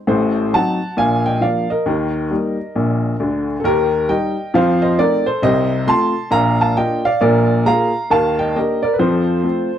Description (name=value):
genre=jazz, stride piano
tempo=134 BPM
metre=4/4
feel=swing 64% on 8ths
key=Bb major from 3.6 s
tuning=A4 = 439 Hz
part: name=warm upright piano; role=solo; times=0.1-9.8 s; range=A1 to C6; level=-14 LUFS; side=equal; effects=none
room=moderate club reverb, RT60 0.8 s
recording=none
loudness=-14 LUFS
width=side -10 dB against mid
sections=0.0-9.8 A section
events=none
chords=0.1 Adim7; 1.0 Bb; 1.9 Eb; 4.5 F7; 5.4 F7/C; 6.3 Bb; 7.2 Bb7; 8.1 Ebmaj7; 9.0 F